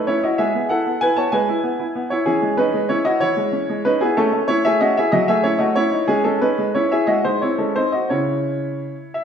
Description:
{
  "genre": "classical-period piano sonatina",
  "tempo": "57-64 BPM (dotted quarters)",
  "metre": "6/8",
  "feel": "rubato",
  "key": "C# minor",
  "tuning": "A4 = 440 Hz",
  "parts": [
    { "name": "bright baby grand piano", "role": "solo", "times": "0.0-9.2 s", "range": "C#3 to A5", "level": "-17 LUFS", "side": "equal", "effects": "none" }
  ],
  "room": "wet recital hall reverb, RT60 1.4 s",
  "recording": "recorded in a church or concert hall",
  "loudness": "-16 LUFS",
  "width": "side -7 dB against mid",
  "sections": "0.0-9.2 A section",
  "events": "none",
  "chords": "0.4 E/G#; 2.3 C#m/E; 4.2 A; 5.1 D#m7b5/F#; 6.1 C#m/G#; 7.1 G#7; 8.1 C#m",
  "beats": "| 0.39 1.32 | 2.27 3.21 | 4.16 5.12 | 6.08 7.07 | 8.11 9.16"
}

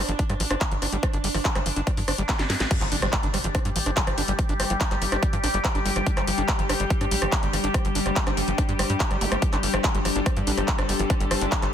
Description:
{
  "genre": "psychedelic trance",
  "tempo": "143 BPM",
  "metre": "4/4",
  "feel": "straight",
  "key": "unclear",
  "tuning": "A4 = 438 Hz",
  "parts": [
    { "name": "overtone-sweeping drone", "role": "sustained chords", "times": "0.0-11.7 s", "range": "G3 to A4", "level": "-30 LUFS", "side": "equal", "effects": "chorus, built-in reverb, sidechain pumping" },
    { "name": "screaming distorted acid line", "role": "riff", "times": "0.0-11.7 s", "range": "F3 to D4", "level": "-32 LUFS", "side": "right 1 dB", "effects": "distortion, chorus, auto-pan, sidechain pumping, dub echo" },
    { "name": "tight sequencer bass", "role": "bass", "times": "0.0-11.7 s", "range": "G1 to G2", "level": "-28 LUFS", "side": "equal", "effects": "none" },
    { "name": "drum and bass drum kit", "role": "drums", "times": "0.1-11.7 s", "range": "crash cymbal, handclaps, hi-hat, rim click, snare drum", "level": "-27 LUFS", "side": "left 1 dB", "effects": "soft clipping on snare" },
    { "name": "electronic kick drum", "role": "drums", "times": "0.2-11.6 s", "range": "none", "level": "-25 LUFS", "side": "equal", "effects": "overdrive" },
    { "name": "impact and zap", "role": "sound effects", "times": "2.8-4.4, 9.2-9.3 s", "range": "none", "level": "-36 LUFS", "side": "equal", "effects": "none" },
    { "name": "warbly tape-like pad", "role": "texture", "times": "3.3-11.7 s", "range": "D4 to D6", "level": "-32 LUFS", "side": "left 3 dB", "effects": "chorus, built-in reverb, phaser, sidechain pumping" }
  ],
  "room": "light reverb",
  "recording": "dense, heavily limited modern master",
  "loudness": "-21 LUFS",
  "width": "side -9 dB against mid",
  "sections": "0.0-2.7 A section; 2.7-11.7 B section",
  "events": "drum fill 2.3-2.7; band accent 2.6; drop 2.7-11.7; impact 2.7-4.4",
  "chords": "0.0 G5",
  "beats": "0.19 0.61 | 1.03 1.45 1.87 2.29 | 2.71 3.13 3.55 3.97 | 4.39 4.81 5.23 5.65 | 6.07 6.49 6.90 7.32 | 7.74 8.16 8.58 9.00 | 9.42 9.84 10.26 10.68 | 11.10 11.52"
}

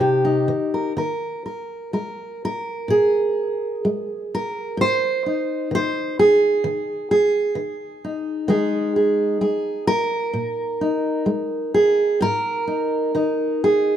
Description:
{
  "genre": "folk, solo fingerstyle acoustic guitar",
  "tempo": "64 BPM",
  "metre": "4/4",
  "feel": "rubato",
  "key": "unclear",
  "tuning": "A4 = 440 Hz",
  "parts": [
    { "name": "fingerpicked steel-string acoustic guitar", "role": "solo", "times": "0.0-14.0 s", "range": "Ab2 to Eb5", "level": "-19 LUFS", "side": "right 1 dB", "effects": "none" }
  ],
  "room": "wet large studio reverb, RT60 1.2 s",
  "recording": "minimal, uncompressed stereo recording",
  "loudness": "-19 LUFS",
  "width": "side -10 dB against mid",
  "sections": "1.0-14.0 A section",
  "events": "none",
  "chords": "0.0 Cm7; 1.0 Ebsus4; 4.8 Ab; 8.5 Ebsus4; 12.2 Absus2",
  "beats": "| 0.97 1.93 2.89 3.85 | 4.79 5.72 6.64 7.57 | 8.49 9.41 10.33 11.27 | 12.21 13.14"
}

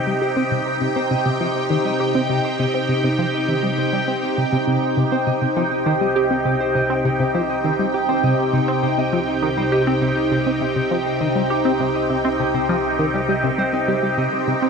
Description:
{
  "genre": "ambient, sequencer-driven space music",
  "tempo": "101 BPM",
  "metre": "4/4",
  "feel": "straight",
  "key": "C minor",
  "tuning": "A4 = 441 Hz",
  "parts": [
    { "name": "phased analog pad", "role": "sustained chords", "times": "0.0-14.7 s", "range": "C3 to G5", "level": "-20 LUFS", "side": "equal", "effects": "phaser, chorus" },
    { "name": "concert harp", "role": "arpeggios", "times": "0.0-14.7 s", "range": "C4 to Eb5", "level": "-26 LUFS", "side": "right 1 dB", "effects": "auto-pan, tape echo" },
    { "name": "pulsing gated texture", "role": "texture", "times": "0.0-4.7 s", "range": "C5", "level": "-38 LUFS", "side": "right 2 dB", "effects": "none" },
    { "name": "tight sequenced synth", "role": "riff", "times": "0.1-14.7 s", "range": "C3 to G4", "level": "-22 LUFS", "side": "equal", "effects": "chorus, tape echo" },
    { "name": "analog drone", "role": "bass", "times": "5.9-14.7 s", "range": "C2", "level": "-38 LUFS", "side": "left 1 dB", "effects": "chorus" }
  ],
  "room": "wet huge ambient reverb, RT60 8.6 s",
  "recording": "none",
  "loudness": "-17 LUFS",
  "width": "side -5 dB against mid",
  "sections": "0.0-4.7 A section; 4.7-14.7 B section",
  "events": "filter sweep on synth arpeggio sound 0.0-4.7",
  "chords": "0.0 Cm",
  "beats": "0.52 1.11 1.70 | 2.30 2.89 3.49 4.08 | 4.67 5.27 5.86 6.46 | 7.05 7.64 8.24 8.83 | 9.43 10.02 10.62 11.21 | 11.80 12.40 12.99 13.59 | 14.18"
}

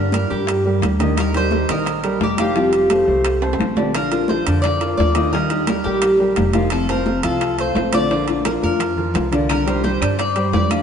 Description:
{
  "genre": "latin, Cuban son and guajira",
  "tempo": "173 BPM",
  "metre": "4/4",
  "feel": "straight",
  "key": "Bb major",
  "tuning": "A4 = 437 Hz",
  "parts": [
    { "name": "Cuban tres", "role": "melody", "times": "0.0-10.8 s", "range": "G4 to D5", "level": "-21 LUFS", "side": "equal", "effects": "none" },
    { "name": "nylon-string guitar", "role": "accompaniment", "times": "0.0-10.8 s", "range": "C3 to G4", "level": "-24 LUFS", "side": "left 4 dB", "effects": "none" },
    { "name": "warm concert grand piano", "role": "arpeggios", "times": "0.0-10.8 s", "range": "D3 to A5", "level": "-22 LUFS", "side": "equal", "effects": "none" },
    { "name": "upright bass", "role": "bass", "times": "0.0-10.8 s", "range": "F1 to G2", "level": "-23 LUFS", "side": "equal", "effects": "none" },
    { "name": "bongos", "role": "percussion", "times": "0.1-10.8 s", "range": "none", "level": "-30 LUFS", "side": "left 5 dB", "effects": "none" },
    { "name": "congas", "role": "percussion", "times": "0.1-10.8 s", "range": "none", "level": "-27 LUFS", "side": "right 2 dB", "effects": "none" },
    { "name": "timbales", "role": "percussion", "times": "0.1-10.8 s", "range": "none", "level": "-28 LUFS", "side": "right 5 dB", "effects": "none" },
    { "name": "claves", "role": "percussion", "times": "9.5-10.8 s", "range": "none", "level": "-33 LUFS", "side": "left 6 dB", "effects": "none" }
  ],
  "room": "wet plate reverb, RT60 2.9 s",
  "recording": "heard from further back in the room, nothing above 10.4 kHz",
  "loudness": "-16 LUFS",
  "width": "side -7 dB against mid",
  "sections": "0.0-10.8 A section",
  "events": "drum fill 3.4-3.9, 8.5-9.5",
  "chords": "0.0 Gm; 1.2 Eb; 2.6 Fadd9; 3.9 Bb; 5.3 Eb; 6.7 F; 8.1 Bb; 9.5 Cmadd9",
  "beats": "0.12 0.47 0.82 | 1.17 1.51 1.86 2.21 | 2.56 2.90 3.25 3.60 | 3.94 4.29 4.64 4.99 | 5.33 5.68 6.03 6.37 | 6.72 7.07 7.41 7.76 | 8.11 8.45 8.80 9.15 | 9.49 9.84 10.19 10.53"
}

